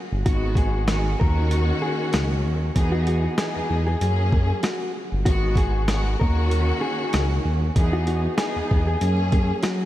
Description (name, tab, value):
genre	hip hop, boom-bap hip-hop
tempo	96 BPM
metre	4/4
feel	swing 55% on 16ths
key	unclear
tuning	A4 = 439 Hz
part	smooth synth bass	bass	0.1-9.9 s	G1 to F#3	-22 LUFS	equal	none
part	mellow electric guitar	melody	0.3-9.9 s	F#4 to A#4	-29 LUFS	left 1 dB	vibrato effect, analog delay
part	warm studio string section	accompaniment	0.3-9.9 s	D#3 to G#4	-27 LUFS	equal	none
part	boom bap sampler-style drum kit	drums	0.3-9.8 s	hi-hat, kick drum, rim click, snare drum	-24 LUFS	equal	none
room	light reverb, digital ambience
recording	vinyl crackle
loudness	-20 LUFS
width	side -14 dB against mid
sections	0.0-9.9 A section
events	break 0.0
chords	0.3 G#m7; 1.2 D#m7; 2.8 Emaj7; 4.0 F#add9; 5.3 G#m7; 6.2 D#m7; 7.8 Emaj7; 9.0 F#add9